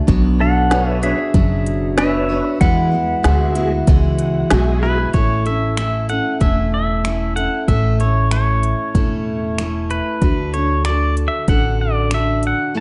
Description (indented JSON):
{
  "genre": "honky-tonk and classic country",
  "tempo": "95 BPM",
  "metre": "4/4",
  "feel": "straight",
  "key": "A major",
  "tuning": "A4 = 439 Hz",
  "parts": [
    { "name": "picked steel-string acoustic guitar", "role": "accompaniment", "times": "0.0-12.8 s", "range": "E2 to C#5", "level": "-24 LUFS", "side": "equal", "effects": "none" },
    { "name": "upright bass", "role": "bass", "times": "0.1-12.5 s", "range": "E1 to E2", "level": "-21 LUFS", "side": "equal", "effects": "none" },
    { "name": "organic electronic drum kit", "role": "drums", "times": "0.1-12.6 s", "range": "finger snaps, hi-hat, kick drum, snare drum", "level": "-20 LUFS", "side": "equal", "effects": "overdrive" },
    { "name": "pedal steel guitar", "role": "second line", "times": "0.4-4.5 s", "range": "G#4 to F#5", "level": "-24 LUFS", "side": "equal", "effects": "none" },
    { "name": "bright tonewheel organ", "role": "accompaniment", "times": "0.7-5.1 s", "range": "D4 to G#5", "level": "-27 LUFS", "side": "equal", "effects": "slow rotary speaker, chorus vibrato" },
    { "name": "pedal steel guitar", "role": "melody", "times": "4.8-12.8 s", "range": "B4 to F#5", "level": "-24 LUFS", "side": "equal", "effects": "none" }
  ],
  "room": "light reverb",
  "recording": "dark, warm production, nothing above 11.0 kHz",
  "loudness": "-17 LUFS",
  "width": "mono",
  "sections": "0.0-5.1 A section; 5.1-12.8 B section",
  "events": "pedal steel guitar solo 0.0-5.1; tonewheel organ fill 3.9-5.1",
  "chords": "0.1 Bmadd9; 2.6 Eadd9; 5.1 A; 10.2 D"
}